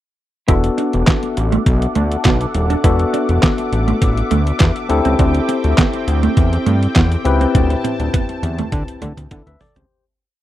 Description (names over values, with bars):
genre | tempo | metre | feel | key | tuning
early-eighties boogie funk | 102 BPM | 4/4 | straight | E minor | A4 = 440 Hz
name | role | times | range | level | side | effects
barky tine electric piano | accompaniment | 0.5-10.0 s | B3 to E5 | -21 LUFS | left 4 dB | overdrive
lush unison pad | sustained chords | 0.5-9.9 s | C4 to D6 | -25 LUFS | right 1 dB | chorus, phaser
mellow electric guitar | riff | 0.5-9.8 s | A3 to E4 | -21 LUFS | right 4 dB | ensemble chorus
fat analog bass | bass | 0.5-9.9 s | D#1 to D3 | -17 LUFS | equal | none
detuned 8-bit digital drum machine | drums | 0.5-9.9 s | handclaps, hi-hat, kick drum, snare drum, toms | -16 LUFS | equal | overdrive
room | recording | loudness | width
little or no reverb | dry, close 1970s-style studio recording | -14 LUFS | side -13 dB against mid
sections
0.5-9.9 verse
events
fade-out 7.5-9.9; drum fill 7.5-9.9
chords
0.5 E9sus4; 4.9 D9sus4